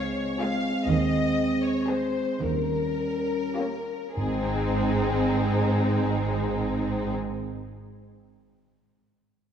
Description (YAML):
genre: classical, slow romantic movement for symphony orchestra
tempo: 32-44 BPM (dotted quarters)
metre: 6/8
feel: rubato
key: Ab major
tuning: A4 = 438 Hz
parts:
  - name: warm symphonic violin section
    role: melody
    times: 0.0-7.2 s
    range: Ab4 to F5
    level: -31 LUFS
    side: left 4 dB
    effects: none
  - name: dark French horn section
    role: sustained chords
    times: 0.0-7.2 s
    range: G3 to Db4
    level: -29 LUFS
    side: equal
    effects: none
  - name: rich symphonic cello section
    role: bass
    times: 0.0-7.1 s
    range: Ab2 to Eb3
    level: -31 LUFS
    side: right 2 dB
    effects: none
  - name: rich symphonic double bass section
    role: bass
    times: 0.0-7.1 s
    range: Ab1 to Eb2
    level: -32 LUFS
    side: right 4 dB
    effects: none
  - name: warm symphonic violin section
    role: second line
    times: 0.4-7.1 s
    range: C4 to Ab4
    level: -32 LUFS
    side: left 2 dB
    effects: none
  - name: rich symphonic viola section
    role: accompaniment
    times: 0.4-7.2 s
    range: Ab3 to Db4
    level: -33 LUFS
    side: right 1 dB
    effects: none
  - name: timpani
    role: percussion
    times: 4.2-7.1 s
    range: Ab2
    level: -36 LUFS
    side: equal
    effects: none
room: wet concert hall reverb, RT60 2.2 s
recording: dark, warm production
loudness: -24 LUFS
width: side -8 dB against mid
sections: 0.0-4.2 A section; 4.2-7.5 B section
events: slowing down 0.0-4.2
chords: 0.0 Dbmaj7; 0.9 Ab/Eb; 2.4 Eb9; 4.2 Ab